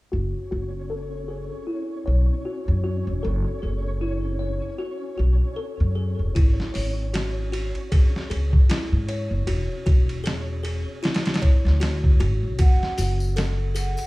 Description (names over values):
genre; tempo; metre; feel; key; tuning
trip hop; 77 BPM; 4/4; swing 57% on 16ths; F# minor; A4 = 442 Hz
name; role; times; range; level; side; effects
music box; arpeggios; 0.1-14.1 s; E4 to C#5; -32 LUFS; left 2 dB; low-pass filter, tape echo
upright bass; bass; 0.1-13.9 s; E1 to G#2; -23 LUFS; equal; none
flickering grainy texture; texture; 0.4-12.6 s; C#4 to C#5; -39 LUFS; left 1 dB; built-in reverb
trip hop sampler-style drum kit; drums; 6.4-14.1 s; hi-hat, kick drum, ride cymbal, snare drum; -20 LUFS; equal; overdrive, studio reverb
mellow hollow concert flute; melody; 12.6-14.1 s; F#5; -32 LUFS; right 3 dB; vintage 12-bit sampler grit, tape echo
tambourine and triangle; percussion; 12.6-14.1 s; none; -39 LUFS; left 4 dB; none
room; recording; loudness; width
small room ambience; none; -21 LUFS; side -21 dB against mid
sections
0.1-12.6 A section; 12.6-14.1 B section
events
filter sweep on music box 0.1-12.6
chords
0.1 F#m7; 6.4 F#sus2; 9.5 E13; 12.6 F#m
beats
| 0.12 0.90 1.68 2.46 | 3.24 4.02 4.80 5.58 | 6.36 7.13 7.91 8.69 | 9.47 10.25 11.03 11.81 | 12.59 13.37